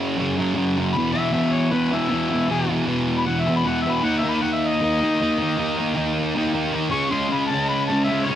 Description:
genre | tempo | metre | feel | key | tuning
rock | 156 BPM | 4/4 | straight | unclear | A4 = 440 Hz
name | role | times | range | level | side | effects
thick fuzz guitar | riff | 0.0-8.4 s | E2 to D#4 | -20 LUFS | equal | distortion, cassette tape
mellow harmonica | melody | 0.9-8.4 s | E4 to C#6 | -25 LUFS | left 4 dB | overdrive, cassette tape
room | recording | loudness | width
moderate studio reverb, RT60 0.6 s | home recording on cassette | -19 LUFS | side -10 dB against mid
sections
0.0-8.4 A section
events
harmonica solo 0.0-8.4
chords
0.0 F#5; 0.9 E5; 4.0 D#5; 6.9 C#5

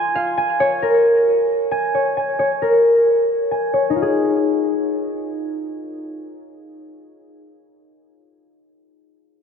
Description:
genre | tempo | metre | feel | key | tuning
hip hop | 134 BPM | 4/4 | half-time | F minor | A4 = 440 Hz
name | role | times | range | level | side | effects
concert harp | arpeggios | 0.0-7.4 s | Eb4 to Ab5 | -16 LUFS | left 1 dB | low-pass filter, ping-pong delay
room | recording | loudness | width
moderate huge ambient reverb, RT60 4.9 s | dark, warm production | -16 LUFS | side -7 dB against mid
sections
0.0-4.0 A section; 4.0-7.5 B section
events
filter sweep on harp 0.0-4.0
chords
0.4 Bbm7

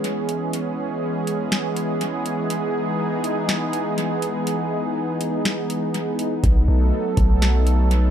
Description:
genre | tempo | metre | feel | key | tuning
hip hop, atmospheric cloud-rap | 122 BPM | 4/4 | half-time | C# minor | A4 = 441 Hz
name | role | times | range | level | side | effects
warm analog pad | sustained chords | 0.0-8.1 s | E3 to A4 | -22 LUFS | equal | chorus, sidechain pumping
booming analog drum machine | drums | 0.0-8.0 s | hi-hat, kick drum, snare drum | -23 LUFS | equal | analog delay
long sustained 808-style bass | bass | 6.4-8.1 s | B1 | -17 LUFS | equal | none
room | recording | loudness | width
light reverb | echo-heavy mix, faint mains hum | -20 LUFS | side -9 dB against mid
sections
0.0-8.1 A section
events
break 0.0-6.4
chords
0.0 C#m7; 6.4 B7

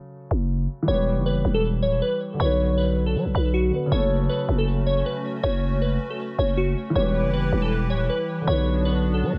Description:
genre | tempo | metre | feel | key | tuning
hip hop | 158 BPM | 4/4 | half-time | F# phrygian | A4 = 441 Hz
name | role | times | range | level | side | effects
dark grand piano | accompaniment | 0.0-9.4 s | C#3 to B4 | -31 LUFS | equal | low-pass filter, tape echo
growling 808-style bass | bass | 0.3-9.4 s | D1 to F#3 | -25 LUFS | equal | none
glassy digital keys | melody | 0.9-9.2 s | F#4 to C#5 | -28 LUFS | equal | chorus, low-pass filter, tape echo
hollow soft pad | sustained chords | 3.9-9.4 s | E3 to B4 | -34 LUFS | equal | ensemble chorus
room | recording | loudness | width
light reverb | echo-heavy mix | -23 LUFS | mono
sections
0.0-3.9 A section; 3.9-9.4 B section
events
break 0.0-0.9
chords
0.0 F#m; 0.9 Em; 2.4 Bm; 3.9 F#m; 7.0 Em; 8.5 Bm

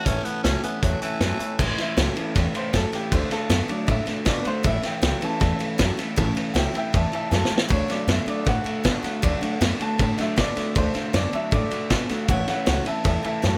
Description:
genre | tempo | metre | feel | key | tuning
rockabilly | 157 BPM | 4/4 | straight | A major | A4 = 439 Hz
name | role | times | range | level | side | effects
raspy tenor saxophone | melody | 0.0-1.6 s | E3 to C#4 | -32 LUFS | equal | slapback echo
picked steel-string acoustic guitar | accompaniment | 0.0-13.6 s | A2 to F#4 | -35 LUFS | equal | none
electric guitar through a small old amp | riff | 0.0-13.6 s | A2 to B3 | -32 LUFS | equal | none
warm upright piano | accompaniment | 0.1-13.6 s | E3 to A5 | -32 LUFS | equal | none
upright bass | bass | 0.1-13.5 s | A1 to B2 | -28 LUFS | equal | none
vintage drum kit | drums | 0.1-13.5 s | crash cymbal, hi-hat, kick drum, ride cymbal, snare drum | -27 LUFS | equal | none
room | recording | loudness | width
light reverb | none | -23 LUFS | mono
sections
0.0-1.6 A section; 1.6-13.6 B section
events
upright piano solo 1.6-13.6; drum fill 7.3-7.7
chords
0.0 A; 3.1 D; 4.6 A; 7.7 D; 12.3 A

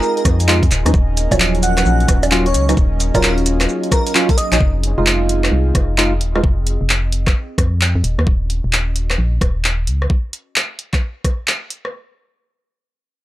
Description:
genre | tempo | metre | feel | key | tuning
UK garage, two-step garage | 131 BPM | 4/4 | swing 64% on 16ths | Eb dorian | A4 = 439 Hz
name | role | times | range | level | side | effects
airy dreamy lead | melody | 0.0-4.6 s | Bb4 to Gb5 | -22 LUFS | equal | chorus, analog delay
airy breathy pad | sustained chords | 0.0-6.4 s | Bb3 to Bb4 | -31 LUFS | equal | chorus, sidechain pumping
percussive organ stab | stabs | 0.0-6.4 s | F3 to F4 | -20 LUFS | right 1 dB | analog chorus, analog delay
punchy analog drum machine | drums | 0.0-11.9 s | bongos, handclaps, hi-hat, rim click, shaker | -19 LUFS | equal | none
warbly tape-like pad | texture | 0.0-10.1 s | Gb3 to Ab5 | -28 LUFS | equal | chorus, built-in reverb, sidechain pumping
organ-like FM bass | bass | 0.3-10.1 s | Eb1 to F2 | -17 LUFS | equal | none
electronic kick drum | drums | 0.3-11.4 s | none | -16 LUFS | equal | overdrive
room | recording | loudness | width
digital ambience | dry, gritty hardware recording | -14 LUFS | side -15 dB against mid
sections
0.0-4.6 A section; 4.6-11.9 B section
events
drop 0.0-4.6; drum fill 4.1-4.6; fade-out on ambient pad 4.6-10.1; filter sweep on FM bass 4.6-10.1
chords
0.0 Fm7; 0.7 Ebm9; 4.6 Fm7; 8.0 Ebm7

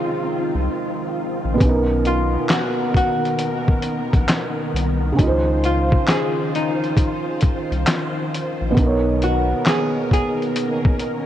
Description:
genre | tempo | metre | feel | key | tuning
lo-fi hip hop | 67 BPM | 4/4 | swing 64% on 16ths | Db major | A4 = 438 Hz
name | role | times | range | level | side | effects
archtop guitar, miked and amplified | melody | 0.0-11.3 s | Eb4 to Ab4 | -24 LUFS | left 2 dB | wide subtle chorus, diffuse ambient delay
felt-muted upright piano | accompaniment | 0.0-11.3 s | Cb3 to Db5 | -23 LUFS | right 2 dB | cassette tape
string machine, cellos | sustained chords | 0.0-11.3 s | Eb3 to C5 | -26 LUFS | equal | ensemble chorus
saturated sub bass | bass | 0.6-9.5 s | Bb1 to Db2 | -22 LUFS | left 1 dB | none
dusty soul sampler-style drum kit | drums | 1.6-11.3 s | handclaps, hi-hat, kick drum, snare drum | -19 LUFS | left 1 dB | none
room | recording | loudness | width
moderate plate reverb, RT60 3.0 s | dreamy mix soaked in reverb, cassette tape | -17 LUFS | side -11 dB against mid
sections
0.0-11.3 A section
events
none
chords
0.0 Dbmaj9; 1.6 Cbmaj7; 5.2 Dbmaj9; 8.8 Cbmaj7

